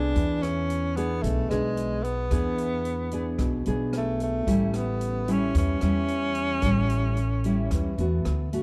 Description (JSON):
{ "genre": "bossa nova", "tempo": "111 BPM", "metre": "4/4", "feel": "straight", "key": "unclear", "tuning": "A4 = 441 Hz", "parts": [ { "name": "breathy tenor saxophone", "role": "melody", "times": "0.0-8.2 s", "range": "G#3 to D4", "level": "-31 LUFS", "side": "equal", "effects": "none" }, { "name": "nylon-string guitar", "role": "accompaniment", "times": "0.0-8.6 s", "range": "A2 to G#4", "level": "-31 LUFS", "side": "equal", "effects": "none" }, { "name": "upright bass", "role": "bass", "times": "0.0-8.6 s", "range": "A1 to E2", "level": "-30 LUFS", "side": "equal", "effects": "none" }, { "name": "open jazz drum kit", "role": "drums", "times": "0.2-8.6 s", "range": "hi-hat, kick drum, rim click", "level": "-35 LUFS", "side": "equal", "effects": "none" } ], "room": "little or no reverb", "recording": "dark, warm production", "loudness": "-26 LUFS", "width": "mono", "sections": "0.0-8.6 A section", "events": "none", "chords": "0.2 E7; 4.5 A7" }